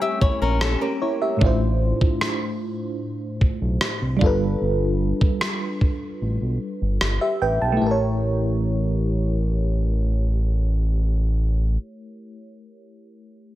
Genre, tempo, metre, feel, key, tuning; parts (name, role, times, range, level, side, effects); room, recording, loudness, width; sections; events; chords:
contemporary R&B; 75 BPM; 4/4; straight; A4 = 438 Hz
FM electric piano with auto-pan; accompaniment; 0.0-13.5 s; A2 to A5; -25 LUFS; equal; phaser
lush unison pad; sustained chords; 0.0-1.4 s; G3 to G4; -36 LUFS; left 1 dB; chorus
flamenco guitar; arpeggios; 0.0-1.4 s; Bb3 to E5; -25 LUFS; left 4 dB; tape echo
smooth gliding synth bass; bass; 0.2-11.8 s; G1 to C2; -22 LUFS; equal
dusty soul sampler-style drum kit; drums; 0.2-7.2 s; kick drum, rim click; -21 LUFS; equal
little or no reverb; -20 LUFS; side -14 dB against mid
0.0-7.8 A section; 7.8-11.0 B section
kick muted 6.2-7.8
0.0 A7b9; 1.4 Dm9/A; 4.2 G9; 7.8 A7b9